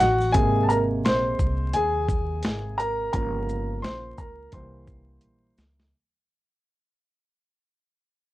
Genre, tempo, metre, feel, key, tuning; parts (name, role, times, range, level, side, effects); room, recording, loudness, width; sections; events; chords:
hip hop, jazz-hop; 86 BPM; 4/4; swing 59% on 16ths; Ab major; A4 = 441 Hz
warm concert grand piano; accompaniment; 0.0-5.9 s; C3 to C6; -24 LUFS; equal
upright bass; bass; 0.0-5.9 s; G1 to Eb2; -28 LUFS; equal; tube saturation
dusty soul sampler-style drum kit; drums; 0.0-5.9 s; hi-hat, kick drum, shaker, snare drum; -26 LUFS; equal; overdrive, vintage 12-bit sampler grit
light reverb; dry, gritty hardware recording, vinyl crackle; -22 LUFS; side -16 dB against mid
0.3-5.9 A section
fade-out 0.3-5.9; grand piano solo 0.3-5.9; drum fill 5.2-5.9
0.3 Ab; 3.1 Gm7b5; 4.5 C7